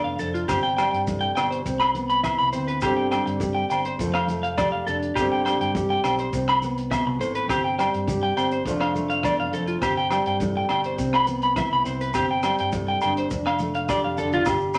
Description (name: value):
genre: highlife guitar band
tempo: 103 BPM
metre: 4/4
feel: straight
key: G mixolydian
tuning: A4 = 439 Hz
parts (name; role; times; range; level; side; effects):
- nylon-string guitar; accompaniment; 0.0-14.8 s; E2 to G4; -30 LUFS; equal; none
- electric guitar at the edge of break-up; arpeggios; 0.0-14.4 s; F4 to B5; -27 LUFS; equal; none
- fingered electric bass; bass; 0.1-14.8 s; F1 to G2; -35 LUFS; equal; none
- compact cocktail drum kit; drums; 0.2-14.8 s; hi-hat, kick drum, rim click; -36 LUFS; equal; none
- maracas; percussion; 0.2-14.8 s; none; -47 LUFS; equal; none
- agogo bells; percussion; 0.5-14.8 s; none; -30 LUFS; equal; none
- congas; percussion; 0.5-14.5 s; none; -37 LUFS; equal; none
room: wet studio reverb, RT60 0.8 s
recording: none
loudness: -24 LUFS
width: mono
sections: 0.0-14.5 A section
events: drum fill 14.0-14.5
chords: 0.5 Gsus4; 1.7 Cmaj7; 2.8 Gsus4; 4.0 F6; 5.2 Gsus4; 6.3 Cmaj7(no3); 7.5 Gsus4; 8.7 F6; 9.8 Gsus4; 11.0 Cmaj7; 12.1 Gsus4; 13.3 F6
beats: | 0.49 1.07 1.66 2.24 | 2.83 3.41 3.99 4.58 | 5.16 5.75 6.33 6.91 | 7.50 8.08 8.66 9.24 | 9.82 10.41 10.99 11.57 | 12.15 12.73 13.31 13.89 | 14.47